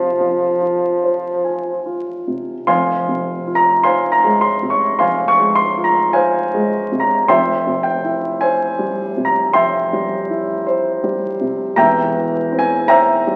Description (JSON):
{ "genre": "classical, romantic duo for bassoon and grand piano", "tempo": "53 BPM", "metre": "4/4", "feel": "rubato", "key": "F minor", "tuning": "A4 = 441 Hz", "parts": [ { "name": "dark bassoon", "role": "melody", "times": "0.0-2.1 s", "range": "F3", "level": "-20 LUFS", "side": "equal", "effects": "none" }, { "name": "warm grand piano", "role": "accompaniment", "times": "0.0-13.4 s", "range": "E1 to Db6", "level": "-17 LUFS", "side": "equal", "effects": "none" } ], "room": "wet recital hall reverb, RT60 1.5 s", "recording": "very old 78 rpm record, vinyl crackle", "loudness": "-17 LUFS", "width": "mono", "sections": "0.0-2.7 A section; 2.7-13.4 A section", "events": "none", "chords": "0.0 Fm; 7.3 C/F; 11.8 C/E" }